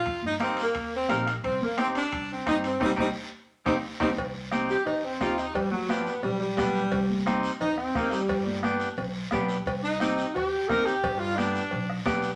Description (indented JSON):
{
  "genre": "latin, cumbia",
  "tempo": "175 BPM",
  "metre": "4/4",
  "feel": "straight",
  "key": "C minor, C harmonic minor from 4.2 s",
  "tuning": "A4 = 438 Hz",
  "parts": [
    { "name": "warm saxophone section", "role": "melody", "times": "0.0-12.0 s", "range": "F3 to Bb4", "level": "-30 LUFS", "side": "equal", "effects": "none" },
    { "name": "upright bass", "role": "bass", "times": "0.1-12.3 s", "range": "G1 to G2", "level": "-38 LUFS", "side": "equal", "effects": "none" },
    { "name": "bombo", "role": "percussion", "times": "0.1-12.2 s", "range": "none", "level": "-42 LUFS", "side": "equal", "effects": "none" },
    { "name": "congas", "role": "percussion", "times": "0.1-12.2 s", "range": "none", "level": "-37 LUFS", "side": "equal", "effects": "none" },
    { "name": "guiro", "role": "percussion", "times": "0.1-12.4 s", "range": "none", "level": "-44 LUFS", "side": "equal", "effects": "none" },
    { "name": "timbales and cowbell", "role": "percussion", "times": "0.1-12.2 s", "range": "none", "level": "-38 LUFS", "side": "equal", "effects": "none" },
    { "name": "clean electric guitar", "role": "accompaniment", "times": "0.4-12.3 s", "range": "Bb3 to Bb4", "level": "-32 LUFS", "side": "equal", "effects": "none" }
  ],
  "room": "wet studio reverb, RT60 0.7 s",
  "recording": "none",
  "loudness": "-28 LUFS",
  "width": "mono",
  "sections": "0.0-4.2 A section; 4.2-12.4 B section",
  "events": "band accent 2.8-4.2; drum fill 3.3-4.2; clean electric guitar fill 3.5-4.2; saxophone section solo 4.2-12.4",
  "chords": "0.0 Eb; 1.4 Cm; 5.5 G; 6.9 Cm; 8.3 G; 9.7 Cm; 11.0 G",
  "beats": "| 0.06 0.41 0.75 1.09 | 1.44 1.78 2.12 2.46 | 2.81 3.15 3.49 3.83 | 4.18 4.52 4.86 5.21 | 5.55 5.89 6.23 6.58 | 6.92 7.26 7.61 7.95 | 8.29 8.63 8.98 9.32 | 9.66 10.01 10.35 10.69 | 11.03 11.38 11.72 12.06"
}